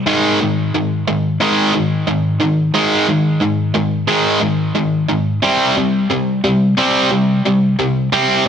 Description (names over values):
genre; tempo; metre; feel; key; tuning
rock; 90 BPM; 4/4; straight; unclear; A4 = 440 Hz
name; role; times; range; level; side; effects
distorted electric guitar; solo; 0.0-8.5 s; Ab2 to C4; -13 LUFS; equal; overdrive, tape echo
room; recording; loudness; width
wet studio reverb, RT60 0.9 s; dense, heavily limited modern master; -13 LUFS; side -8 dB against mid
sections
0.0-8.5 A section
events
none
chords
0.1 Ab5; 5.4 C5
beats
| 0.06 0.73 1.41 2.08 | 2.75 3.42 4.09 4.76 | 5.43 6.10 6.77 7.44 | 8.11